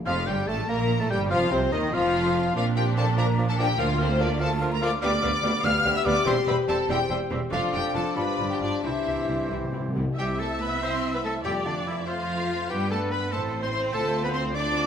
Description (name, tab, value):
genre	quick classical-period movement for symphony orchestra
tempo	96 BPM (dotted quarters)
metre	6/8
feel	rubato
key	Bb major, C major from 5.0 s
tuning	A4 = 440 Hz
part	rich studio violin section	melody	0.1-14.9 s	C5 to F6	-32 LUFS	left 3 dB	none
part	bright clarinet	second line	0.1-14.9 s	C4 to D5	-35 LUFS	left 3 dB	none
part	mellow hollow concert flute	second line	0.1-14.9 s	C5 to F6	-33 LUFS	left 2 dB	none
part	rich studio violin section	second line	0.1-14.9 s	C4 to F5	-33 LUFS	left 3 dB	none
part	warm oboe	second line	0.1-14.9 s	D4 to Bb5	-35 LUFS	right 1 dB	none
part	rich studio viola section	accompaniment	0.1-14.9 s	C3 to E5	-33 LUFS	right 1 dB	none
part	warm bassoon	accompaniment	0.1-9.9 s	C3 to Bb3	-32 LUFS	right 2 dB	none
part	warm French horn section	sustained chords	0.1-14.9 s	C3 to G4	-31 LUFS	left 4 dB	none
part	rich studio cello section	bass	0.1-14.9 s	C2 to D4	-32 LUFS	right 2 dB	none
part	warm studio double bass section	bass	0.1-14.9 s	E1 to G2	-30 LUFS	right 3 dB	none
part	timpani	percussion	8.8-12.0 s	F2 to C3	-33 LUFS	left 1 dB	none
room	wet recital hall reverb, RT60 1.4 s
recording	none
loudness	-23 LUFS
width	side -8 dB against mid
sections	0.1-10.2 A section; 10.2-14.9 B section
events	timpani fill 8.8-10.2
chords	0.1 Bb5/F; 1.3 F5; 2.6 Bb; 3.8 Bb/D; 5.0 G7/D; 6.3 C/E; 7.5 Dm/F; 8.2 G7; 8.8 C; 11.5 F; 12.7 G; 13.3 Am; 13.9 Dm7